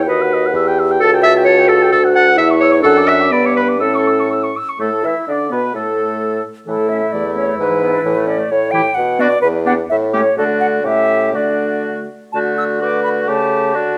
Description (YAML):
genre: quick classical-period movement for wind quintet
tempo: 129 BPM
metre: 2/4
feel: rubato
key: D major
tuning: A4 = 439 Hz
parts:
  - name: bright concert flute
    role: melody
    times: 0.0-14.0 s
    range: A4 to E6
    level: -20 LUFS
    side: equal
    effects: none
  - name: warm oboe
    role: second line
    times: 0.0-14.0 s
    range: E4 to E6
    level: -23 LUFS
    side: equal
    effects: none
  - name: mellow French horn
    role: accompaniment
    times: 0.0-14.0 s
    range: E3 to B4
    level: -22 LUFS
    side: equal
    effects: none
  - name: warm bassoon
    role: bass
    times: 0.0-14.0 s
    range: C#2 to E3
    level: -21 LUFS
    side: equal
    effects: none
  - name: bright clarinet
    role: accompaniment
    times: 0.1-14.0 s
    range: E3 to F#5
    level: -21 LUFS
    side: equal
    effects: none
room: moderate recital hall reverb, RT60 1.4 s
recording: close, detailed microphones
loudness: -15 LUFS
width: mono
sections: 0.0-4.8 A section; 4.8-12.3 B section; 12.3-14.0 B section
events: none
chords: 0.1 B/D#; 0.5 Em; 1.0 A7/C#; 1.9 D; 2.4 C#m/E; 2.8 D/F#; 3.3 G; 3.8 A; 4.8 D5/A; 5.7 N.C.; 6.7 A; 7.6 E7/G#; 8.0 A; 8.5 A7; 9.0 Bm; 9.4 E7(no3); 9.9 A; 10.4 D; 10.8 A7; 11.3 D; 13.3 A7/C#